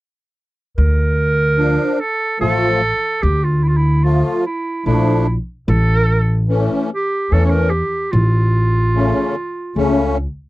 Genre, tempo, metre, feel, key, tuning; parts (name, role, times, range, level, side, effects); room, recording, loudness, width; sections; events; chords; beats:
klezmer; 73 BPM; 3/4; straight; D harmonic minor; A4 = 443 Hz
bright clarinet; melody; 0.8-10.2 s; E4 to C#5; -20 LUFS; right 2 dB
upright bass; bass; 0.8-10.2 s; A1 to E2; -15 LUFS; equal
musette accordion; accompaniment; 1.6-10.2 s; C#3 to F4; -17 LUFS; left 2 dB
little or no reverb; dry, close 1970s-style studio recording; -14 LUFS; side -18 dB against mid
0.8-10.5 A section
0.8 Dm; 5.7 A
| 0.77 1.59 2.40 | 3.22 4.04 4.86 | 5.67 6.49 7.31 | 8.13 8.94 9.76